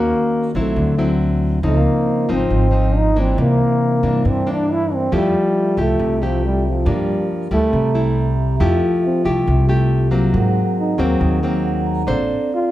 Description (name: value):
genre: bossa nova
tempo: 138 BPM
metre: 4/4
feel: straight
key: F major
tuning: A4 = 440 Hz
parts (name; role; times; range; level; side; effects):
- breathy trombone; melody; 0.0-12.7 s; F3 to F4; -19 LUFS; equal; none
- nylon-string guitar; accompaniment; 0.0-12.7 s; G2 to C5; -19 LUFS; left 1 dB; none
- upright bass; bass; 0.0-12.3 s; Ab1 to Ab2; -20 LUFS; equal; none
- vibraphone with soft mallets; accompaniment; 1.6-12.7 s; C4 to Bb5; -24 LUFS; right 2 dB; none
room: moderate large studio reverb, RT60 1.1 s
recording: none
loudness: -15 LUFS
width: side -14 dB against mid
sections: 0.0-8.6 A section; 8.6-12.7 B section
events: trombone solo 8.6-12.7; vibraphone fill 11.4-12.1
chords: 0.0 Ebm7; 0.8 D9; 1.6 Dbmaj9; 3.4 C9; 5.1 Fmaj9; 6.9 Gm7; 7.7 C7; 8.6 Fmaj9; 10.3 Ab9; 12.1 Bbmaj9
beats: 0.34 0.78 1.21 | 1.65 2.08 2.52 2.95 | 3.39 3.82 4.25 4.69 | 5.12 5.56 5.99 6.43 | 6.86 7.30 7.73 8.17 | 8.60 9.04 9.47 9.91 | 10.34 10.78 11.21 11.65 | 12.08 12.52